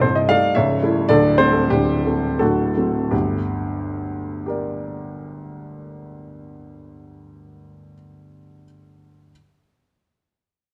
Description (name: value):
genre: classical, romantic triple-time dance for piano with dotted rhythms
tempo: 78-116 BPM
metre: 3/4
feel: rubato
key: G minor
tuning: A4 = 444 Hz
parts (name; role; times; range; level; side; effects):
- warm baby grand piano; solo; 0.0-9.3 s; C1 to F5; -20 LUFS; equal; none
room: wet large studio reverb, RT60 1.5 s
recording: none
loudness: -19 LUFS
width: mono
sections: 0.0-3.1 A section; 3.1-7.2 B section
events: slowing down 0.0-3.1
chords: 0.0 Am7b5/C; 0.6 A7/C#; 1.1 D7sus4; 2.4 D7; 3.1 Gm